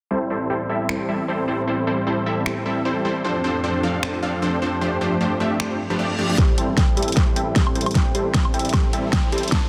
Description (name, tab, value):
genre	future bass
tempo	153 BPM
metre	4/4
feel	swing 55% on 16ths, half-time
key	A minor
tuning	A4 = 442 Hz
part	airy breathy pad	sustained chords	0.1-9.7 s	F2 to G4	-32 LUFS	equal	chorus, sidechain pumping
part	supersaw stab	riff	0.1-9.7 s	F3 to F5	-25 LUFS	equal	sidechain pumping, low-pass filter, delay
part	pop drum kit	drums	0.9-9.6 s	finger snaps, hi-hat, snare drum, woodblock	-26 LUFS	equal	soft clipping on snare, small room ambience
part	reverse cymbal and riser	sound effects	5.8-9.7 s	none	-36 LUFS	equal	none
part	thumb-piano-like synth pluck	arpeggios	6.4-9.6 s	G4 to A5	-32 LUFS	equal	chorus, sidechain pumping, delay
part	electronic kick drum	drums	6.4-9.6 s	none	-22 LUFS	equal	small room ambience
room	light reverb, digital ambience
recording	dense, heavily limited modern master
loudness	-21 LUFS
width	mono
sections	0.1-6.4 A section; 6.4-9.7 B section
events	filter sweep on supersaw synth 0.1-6.4; filter sweep on analog synth pad 0.1-6.4; reverse cymbal 5.8-6.4; build-up 6.4-9.7; drum fill 6.4-9.7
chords	0.1 Am7; 3.2 F6; 4.8 G9sus4; 6.4 Am7